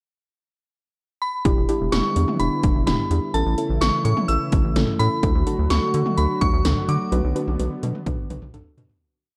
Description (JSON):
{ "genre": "synth-pop", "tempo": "127 BPM", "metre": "4/4", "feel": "straight", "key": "E dorian", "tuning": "A4 = 445 Hz", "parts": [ { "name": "glassy synth bell", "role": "melody", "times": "1.2-8.5 s", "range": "A5 to E6", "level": "-29 LUFS", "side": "equal", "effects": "chorus, tape echo" }, { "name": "soft round pluck", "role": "accompaniment", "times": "1.5-9.0 s", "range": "C#4 to B4", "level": "-30 LUFS", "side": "equal", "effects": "chorus" }, { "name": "warm analog pad", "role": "sustained chords", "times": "1.5-9.0 s", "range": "C#3 to F#4", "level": "-30 LUFS", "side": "equal", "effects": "chorus" }, { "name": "rubbery square bass", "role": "bass", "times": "1.5-8.9 s", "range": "E1 to D3", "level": "-25 LUFS", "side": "equal", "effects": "none" }, { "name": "80s electronic pad drums", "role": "drums", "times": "1.5-9.0 s", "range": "hi-hat, kick drum, snare drum, toms", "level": "-26 LUFS", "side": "equal", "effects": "gated reverb on snare and toms, overdrive" } ], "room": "light reverb", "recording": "dark, warm production", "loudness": "-21 LUFS", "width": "mono", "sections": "0.0-1.5 pickup bar; 1.5-9.0 verse", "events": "fade-out 7.1-9.0; drum fill 7.1-9.0", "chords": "0.0 N.C.; 1.5 Em7; 3.3 A; 5.2 D; 7.1 Bm" }